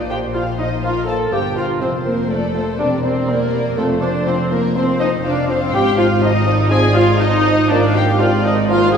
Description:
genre	quick classical-period movement for symphony orchestra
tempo	122 BPM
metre	4/4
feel	rubato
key	unclear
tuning	A4 = 440 Hz
part	dark studio violin section	melody	0.0-9.0 s	Bb4 to F5	-27 LUFS	left 3 dB	none
part	dark clarinet	second line	0.0-9.0 s	A4 to A5	-26 LUFS	equal	none
part	warm chamber violin section	second line	0.0-9.0 s	A4 to A5	-26 LUFS	left 2 dB	none
part	mellow French horn section	sustained chords	0.0-8.9 s	Bb3 to G4	-26 LUFS	left 1 dB	none
part	clear chamber double bass section	bass	0.0-9.0 s	E1 to Bb1	-22 LUFS	right 1 dB	none
part	dark chamber cello section	bass	0.0-9.0 s	E2 to Bb2	-23 LUFS	right 1 dB	none
part	mellow hollow flute section	second line	0.1-9.0 s	Bb4 to F5	-30 LUFS	equal	none
part	mellow bassoon	accompaniment	0.1-9.0 s	F3 to G3	-25 LUFS	equal	none
part	warm studio viola section	accompaniment	0.1-9.0 s	A3 to A4	-18 LUFS	equal	none
room	wet concert hall reverb, RT60 2.4 s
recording	heard from further back in the room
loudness	-14 LUFS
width	side -7 dB against mid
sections	0.0-9.0 A section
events	none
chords	0.0 Bb5; 1.8 F; 2.8 C7/E; 3.8 F5; 5.7 Fm7/Ab; 7.7 Bb7/Ab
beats	0.34 0.83 1.32 | 1.81 2.30 2.79 3.29 | 3.78 4.27 4.76 5.25 | 5.74 6.23 6.71 7.20 | 7.70 8.20 8.70

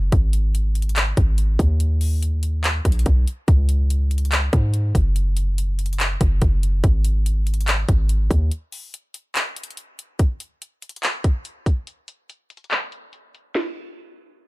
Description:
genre	hip hop, trap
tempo	143 BPM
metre	4/4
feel	half-time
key	unclear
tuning	A4 = 439 Hz
part	hard-hitting 808-style bass	bass	0.0-8.5 s	F#1 to G#2	-19 LUFS	equal	none
part	trap drum kit	drums	0.1-13.6 s	crash cymbal, handclaps, hi-hat, kick drum, snare drum	-20 LUFS	equal	none
room	little or no reverb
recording	low-pass filter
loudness	-18 LUFS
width	side -20 dB against mid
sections	0.0-10.2 A section; 10.2-13.6 B section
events	break 8.5-10.2; filter sweep 10.2-13.6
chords	none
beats	| 0.12 0.54 0.96 1.38 | 1.80 2.22 2.64 3.06 | 3.48 3.90 4.32 4.74 | 5.16 5.58 6.00 6.42 | 6.84 7.26 7.68 8.10 | 8.52 8.94 9.36 9.77 | 10.19 10.61 11.03 11.45 | 11.87 12.29 12.71 13.13 | 13.55

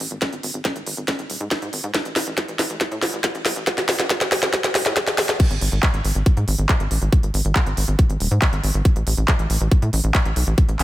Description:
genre	psychedelic trance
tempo	139 BPM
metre	4/4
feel	straight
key	G# phrygian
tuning	A4 = 440 Hz
part	tight sequencer bass	bass	0.0-10.8 s	D#1 to A2	-22 LUFS	equal	high-pass filter
part	techno drum kit	drums	0.0-10.8 s	crash cymbal, handclaps, hi-hat, snare drum	-22 LUFS	equal	none
part	electronic kick drum	drums	0.2-10.7 s	none	-17 LUFS	equal	high-pass filter on kick, high-pass filter on room
room	light reverb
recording	none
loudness	-18 LUFS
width	side -15 dB against mid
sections	0.0-5.4 A section; 5.4-10.8 B section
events	build-up 0.0-5.4; drum fill 0.0-5.4; drop 5.4-10.8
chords	none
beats	| 0.22 0.65 1.08 1.51 | 1.95 2.38 2.81 3.24 | 3.67 4.10 4.54 4.97 | 5.40 5.83 6.26 6.69 | 7.12 7.56 7.99 8.42 | 8.85 9.28 9.71 10.15 | 10.58

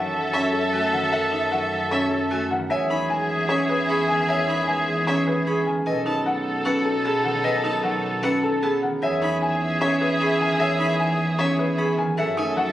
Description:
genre	classical, minimalist pattern music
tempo	152 BPM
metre	4/4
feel	straight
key	unclear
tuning	A4 = 440 Hz
part	warm baby grand piano	melody	0.0-12.7 s	A4 to G#5	-26 LUFS	left 2 dB	none
part	warm oboe	second line	0.0-12.7 s	G#4 to A4	-26 LUFS	equal	none
part	concert harp	accompaniment	0.0-12.7 s	D#3 to C#4	-33 LUFS	left 1 dB	none
part	rich studio violin section	sustained chords	0.0-12.7 s	D#4 to E5	-30 LUFS	left 1 dB	none
part	bright studio double bass section	bass	0.0-12.7 s	B1 to F#2	-30 LUFS	right 1 dB	none
part	clear violin	arpeggios	0.3-12.5 s	E5 to B5	-31 LUFS	left 1 dB	none
part	marimba with medium hard mallets	arpeggios	0.3-12.6 s	C#4 to C#5	-26 LUFS	right 2 dB	none
room	moderate large studio reverb, RT60 0.9 s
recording	recorded on a phone in the room, studio reverb, compression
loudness	-20 LUFS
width	side -13 dB against mid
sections	0.0-12.7 A section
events	none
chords	0.0 F#m7; 2.7 E6; 5.9 B9; 9.0 E6; 12.2 F#m9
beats	0.34 0.73 | 1.12 1.52 1.92 2.31 | 2.70 3.10 3.49 3.89 | 4.28 4.68 5.07 5.47 | 5.86 6.26 6.65 7.05 | 7.44 7.84 8.23 8.62 | 9.02 9.41 9.81 10.20 | 10.60 10.99 11.39 11.78 | 12.18 12.57

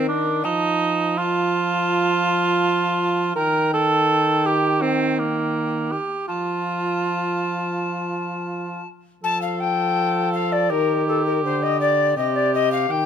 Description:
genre	classical, renaissance-style consort dance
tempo	82 BPM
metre	4/4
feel	straight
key	F mixolydian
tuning	A4 = 440 Hz
part	mellow alto recorder	melody	0.0-13.1 s	A4 to A5	-24 LUFS	left 5 dB	none
part	mellow cor anglais	second line	0.0-13.1 s	Bb3 to Bb4	-22 LUFS	right 4 dB	none
part	clear trombone	bass	0.0-13.1 s	C3 to F3	-25 LUFS	equal	none
room	light reverb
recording	close, detailed microphones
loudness	-19 LUFS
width	side -8 dB against mid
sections	0.0-9.2 A section; 9.2-13.1 B section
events	none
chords	0.5 F; 3.4 Eb; 6.3 F; 10.7 Eb; 12.2 Cm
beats	| 0.45 1.18 1.91 2.64 | 3.36 4.09 4.82 5.55 | 6.28 7.02 7.76 8.50 | 9.24 9.97 10.70 11.44 | 12.17 12.90

